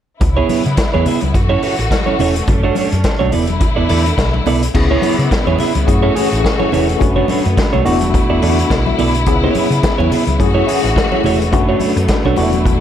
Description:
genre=disco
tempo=106 BPM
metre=4/4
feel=swing 56% on 16ths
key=unclear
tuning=A4 = 440 Hz
part: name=clean electric guitar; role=accompaniment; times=0.2-12.7 s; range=A3 to E5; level=-18 LUFS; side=right 7 dB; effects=none
part: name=clear studio string section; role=sustained chords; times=0.2-12.8 s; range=C#3 to F#4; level=-21 LUFS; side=left 2 dB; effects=none
part: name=hollow-body short-scale fingered electric bass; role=bass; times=0.2-12.8 s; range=E1 to C#3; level=-17 LUFS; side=equal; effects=none
part: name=vintage drum kit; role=drums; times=0.2-12.8 s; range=crash cymbal, hi-hat, kick drum, snare drum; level=-18 LUFS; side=equal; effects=none
part: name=congas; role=percussion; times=0.2-12.6 s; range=none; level=-25 LUFS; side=left 7 dB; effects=none
part: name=tine electric piano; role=accompaniment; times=4.7-12.8 s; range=G#3 to B4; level=-18 LUFS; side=left 5 dB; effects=overdrive, fast stereo tremolo
room=small room reverb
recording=none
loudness=-12 LUFS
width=side -10 dB against mid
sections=0.2-4.7 A section; 4.7-12.8 B section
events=none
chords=0.2 C#m7; 1.4 F#m7; 2.5 Bm9/F# (rootless); 3.3 E7sus4; 4.7 C#m7; 5.9 F#m7; 7.0 Bm9/F#; 7.9 E7sus4; 9.3 C#m7; 10.4 F#m7; 11.5 Bm9/F#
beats=| 0.22 0.79 1.35 1.92 | 2.48 3.05 3.62 4.18 | 4.75 5.31 5.88 6.44 | 7.01 7.57 8.14 8.70 | 9.27 9.83 10.40 10.96 | 11.53 12.09 12.66

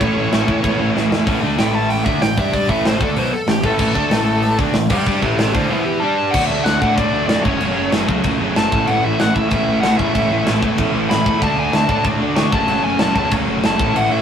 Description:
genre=punk rock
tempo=189 BPM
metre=4/4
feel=straight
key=unclear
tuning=A4 = 440 Hz
part: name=high-gain lead guitar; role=melody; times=0.0-14.2 s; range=E4 to C#6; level=-20 LUFS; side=left 2 dB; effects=distortion
part: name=biting overdriven guitar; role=riff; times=0.0-14.2 s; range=A2 to G4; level=-25 LUFS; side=left 5 dB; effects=none
part: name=distorted electric guitar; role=riff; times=0.0-14.2 s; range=F#2 to G4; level=-23 LUFS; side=equal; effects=distortion
part: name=sludgy distorted guitar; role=riff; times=0.0-14.2 s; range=F#2 to G4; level=-22 LUFS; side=right 4 dB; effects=overdrive
part: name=growling picked electric bass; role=bass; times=0.0-14.2 s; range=F#1 to A2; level=-25 LUFS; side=equal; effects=overdrive
part: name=tight metal drum kit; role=drums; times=0.0-14.0 s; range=crash cymbal, hi-hat, kick drum, snare drum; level=-20 LUFS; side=equal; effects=none
room=light reverb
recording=rough rehearsal-room recording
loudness=-14 LUFS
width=side -8 dB against mid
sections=0.0-1.3 A section; 1.3-6.3 B section; 6.3-14.2 A section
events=drum fill 0.9-1.3; lead electric guitar solo 1.3-6.3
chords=0.0 A; 1.3 A5; 2.4 G5; 2.7 A5; 4.9 G5; 5.2 A5; 5.7 E5; 6.0 G5; 6.3 D; 7.4 F#m; 8.7 A; 11.4 D; 12.5 F#m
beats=0.31 0.63 0.94 | 1.26 1.58 1.90 2.21 | 2.53 2.85 3.16 3.48 | 3.80 4.11 4.43 4.75 | 5.06 5.38 5.70 6.02 | 6.33 6.65 6.97 7.29 | 7.61 7.92 8.24 8.56 | 8.88 9.19 9.51 9.83 | 10.14 10.46 10.78 11.10 | 11.41 11.73 12.05 12.36 | 12.68 12.99 13.31 13.63 | 13.94

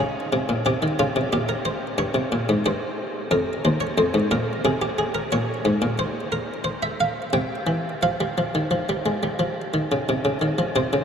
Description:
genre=classical, baroque-style two-part invention for harpsichord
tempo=90 BPM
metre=4/4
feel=straight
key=Db major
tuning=A4 = 440 Hz
part: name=buff-stop harpsichord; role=solo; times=0.0-11.0 s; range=Eb2 to G5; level=-21 LUFS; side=equal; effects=none
room=wet huge ambient reverb, RT60 8.5 s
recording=in a vast, echoing space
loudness=-21 LUFS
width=side -7 dB against mid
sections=0.0-10.8 A section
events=none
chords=0.0 Dbmaj7; 1.3 Gdim/Bb; 2.7 Cm7/G; 4.0 Fm (rootless); 5.3 Bbm; 6.7 C7/Bb; 8.0 N.C.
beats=0.67 1.33 2.00 | 2.67 3.33 3.99 4.65 | 5.32 5.99 6.66 7.34 | 8.03 8.72 9.40 10.09 | 10.77

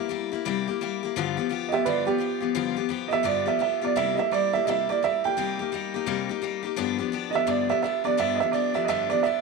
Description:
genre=rock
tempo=170 BPM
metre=4/4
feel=swing 62% on 8ths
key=G mixolydian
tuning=A4 = 440 Hz
part: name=picked steel-string acoustic guitar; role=accompaniment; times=0.0-9.4 s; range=G2 to G4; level=-27 LUFS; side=left 13 dB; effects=none
part: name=dark upright piano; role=melody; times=1.7-9.4 s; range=G4 to G5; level=-24 LUFS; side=right 12 dB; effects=none
room=moderate echo chamber reverb, RT60 1.7 s, studio reverb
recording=1960s-style stereo with parts hard left and right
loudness=-23 LUFS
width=side -3 dB against mid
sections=0.0-9.4 A section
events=none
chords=0.0 C7; 1.2 G7; 4.0 C7; 5.4 Cm7; 6.8 G7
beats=0.10 0.45 0.80 | 1.16 1.51 1.86 2.21 | 2.56 2.91 3.26 3.62 | 3.97 4.32 4.67 5.02 | 5.38 5.73 6.08 6.43 | 6.78 7.14 7.49 7.84 | 8.19 8.54 8.90 9.25

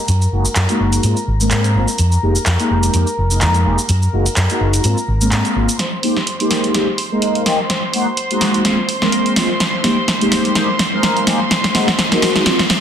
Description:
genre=filtered disco house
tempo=126 BPM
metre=4/4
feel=swing 56% on 16ths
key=F phrygian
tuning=A4 = 442 Hz
part: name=clear studio violin section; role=sustained chords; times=0.0-12.8 s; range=Bb4 to C6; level=-23 LUFS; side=equal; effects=low-pass filter
part: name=hollow-body short-scale fingered electric bass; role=bass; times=0.1-12.8 s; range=F1 to Ab2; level=-16 LUFS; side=equal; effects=high-pass filter, low-pass filter
part: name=punchy analog drum machine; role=drums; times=0.1-12.8 s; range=cabasa, handclaps, hi-hat, snare drum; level=-18 LUFS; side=equal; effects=none
part: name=mellow synth brass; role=accompaniment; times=0.3-12.6 s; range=Ab3 to Bb4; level=-18 LUFS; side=equal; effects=chorus, phaser, low-pass filter
room=moderate plate reverb, RT60 1.5 s, digital ambience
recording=dense, heavily limited modern master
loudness=-13 LUFS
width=side -8 dB against mid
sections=0.0-5.8 A section; 5.8-12.8 B section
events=filter sweep 0.0-5.8, 5.8-12.8; build-up 5.8-12.8; drum fill 5.8-12.8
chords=0.1 Gb69; 1.0 Ab69; 2.0 Fm11; 3.9 Gb69; 4.8 Ab69; 5.8 Fm11; 7.7 Gb69; 8.7 Ab69; 9.6 Fm11; 11.5 Gb69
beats=| 0.08 0.56 1.03 1.51 | 1.99 2.46 2.94 3.42 | 3.89 4.37 4.84 5.32 | 5.80 6.27 6.75 7.22 | 7.70 8.18 8.65 9.13 | 9.61 10.08 10.56 11.03 | 11.51 11.99 12.46

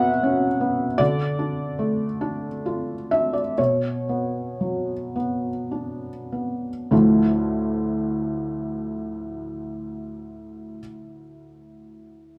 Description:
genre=neoclassical minimalist piano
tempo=33-54 BPM (dotted quarters)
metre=6/8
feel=rubato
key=unclear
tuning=A4 = 435 Hz
part: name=felt-muted upright piano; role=solo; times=0.0-12.4 s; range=D2 to F#5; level=-25 LUFS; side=equal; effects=none
room=moderate studio reverb, RT60 0.8 s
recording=band playing live in one room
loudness=-24 LUFS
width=mono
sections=0.0-6.9 A section; 6.9-10.5 B section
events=slowing down 0.0-6.9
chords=0.0 Bmadd9; 1.0 Dm; 3.6 Bmadd9; 6.9 Dm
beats=| 1.00 2.21 | 3.58 5.14 | 6.91 8.68

